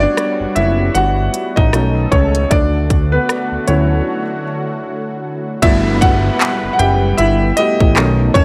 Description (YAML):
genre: contemporary R&B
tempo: 77 BPM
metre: 4/4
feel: swing 58% on 16ths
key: unclear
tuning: A4 = 443 Hz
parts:
  - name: clear concert grand piano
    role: accompaniment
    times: 0.0-8.4 s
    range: D#3 to G5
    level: -19 LUFS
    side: equal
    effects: none
  - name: lush unison pad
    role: sustained chords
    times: 0.0-8.4 s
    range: B2 to B4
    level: -26 LUFS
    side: equal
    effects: chorus
  - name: fat analog bass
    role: bass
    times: 0.0-8.4 s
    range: F#1 to D2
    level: -18 LUFS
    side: equal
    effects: none
  - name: trap drum kit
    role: drums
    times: 0.2-8.4 s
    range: handclaps, hi-hat, kick drum, rim click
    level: -18 LUFS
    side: equal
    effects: none
  - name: downlifter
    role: sound effects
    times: 5.7-8.4 s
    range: none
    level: -30 LUFS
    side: equal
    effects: none
  - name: glassy wavetable pluck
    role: texture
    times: 5.6-8.4 s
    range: D5 to B5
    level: -33 LUFS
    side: equal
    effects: none
room: digital ambience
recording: none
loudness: -15 LUFS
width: mono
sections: 0.0-5.6 A section; 5.6-8.4 B section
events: grand piano solo 0.0-5.6, 5.6-8.4; break 4.1-5.6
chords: 0.0 Gmaj7; 1.7 B7; 2.5 Dmaj7; 5.6 Gmaj7